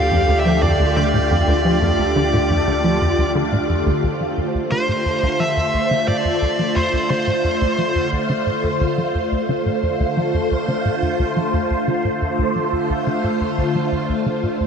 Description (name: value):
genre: ambient, sequencer-driven space music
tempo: 88 BPM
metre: 4/4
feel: straight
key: D minor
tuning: A4 = 440 Hz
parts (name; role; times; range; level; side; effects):
- high-gain lead guitar; melody; 0.0-8.1 s; C5 to F5; -22 LUFS; left 1 dB; distortion, ping-pong delay
- phased string machine; sustained chords; 0.0-14.7 s; D3 to C5; -20 LUFS; equal; ensemble chorus, phaser
- warm sub bass; bass; 0.0-4.0 s; D2; -24 LUFS; equal; none
- bubbling stepped-filter texture; texture; 0.0-4.1 s; D4 to G4; -29 LUFS; right 3 dB; chorus, built-in reverb
- tight sequencer bass; riff; 0.1-14.7 s; D2 to F3; -22 LUFS; equal; ensemble chorus, ping-pong delay
room: wet huge ambient reverb, RT60 7.7 s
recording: none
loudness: -16 LUFS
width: side -6 dB against mid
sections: 0.0-4.0 A section; 4.0-14.7 B section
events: none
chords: 0.0 Dm; 4.0 Dm7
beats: 0.62 | 1.31 1.99 2.67 3.35 | 4.03 4.72 5.40 6.08 | 6.76 7.44 8.12 8.81 | 9.49 10.17 10.85 11.53 | 12.22 12.90 13.58 14.26